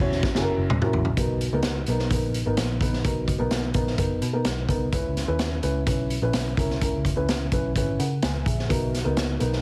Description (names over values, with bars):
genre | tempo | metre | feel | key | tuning
uptempo 1960s-style soul | 128 BPM | 4/4 | straight | B major | A4 = 441 Hz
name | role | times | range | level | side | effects
dark upright piano | accompaniment | 0.0-9.6 s | B2 to G#5 | -30 LUFS | equal | none
vintage muted picked electric bass | bass | 0.0-9.6 s | E1 to C#3 | -30 LUFS | equal | none
vintage drum kit | drums | 0.0-9.6 s | hi-hat, kick drum, snare drum, toms | -29 LUFS | equal | none
room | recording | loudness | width
light reverb | heavily compressed radio sound, multiband compression | -25 LUFS | mono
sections
0.0-1.2 A section; 1.2-9.6 B section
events
drum fill 0.2-1.2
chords
0.0 F#7; 1.2 Bmaj7; 4.9 C#m7; 8.7 Bmaj7